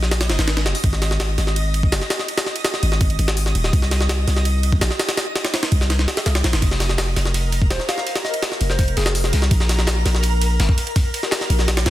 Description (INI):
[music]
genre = drum and bass, jungle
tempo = 166 BPM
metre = 4/4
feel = straight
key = F minor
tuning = A4 = 443 Hz
[part]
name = long sustained 808-style bass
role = bass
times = 0.0-11.9 s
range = Eb1 to C2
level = -19 LUFS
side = equal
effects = tube saturation
[part]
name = jungle sampler-style drum kit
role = drums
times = 0.0-11.9 s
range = hi-hat, kick drum, ride cymbal, snare drum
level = -20 LUFS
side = equal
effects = none
[part]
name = twinkling granular texture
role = texture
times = 0.0-11.9 s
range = Bb4 to Eb6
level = -29 LUFS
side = equal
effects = built-in reverb
[part]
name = crunchy breakbeat drum kit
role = drums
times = 6.6-11.9 s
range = hi-hat, snare drum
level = -31 LUFS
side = left 3 dB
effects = high-pass filter on hats, high-pass filter on snare, high-pass filter on room
[part]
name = soft struck synth lead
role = melody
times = 7.7-9.1 s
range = Ab4 to F5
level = -28 LUFS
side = left 1 dB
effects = chorus, tremolo, dub echo
[sound]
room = digital ambience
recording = dense, heavily limited modern master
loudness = -17 LUFS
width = side -14 dB against mid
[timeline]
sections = 0.0-11.9 A section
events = none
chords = 0.0 Bb5; 0.8 Ab5; 3.7 Cm; 6.6 F5; 9.5 Bb5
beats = 0.12 0.48 | 0.84 1.20 1.56 1.92 | 2.29 2.65 3.01 3.37 | 3.73 4.09 4.45 4.82 | 5.18 5.54 5.90 6.26 | 6.62 6.98 7.34 7.71 | 8.07 8.43 8.79 9.15 | 9.51 9.88 10.24 10.60 | 10.96 11.32 11.68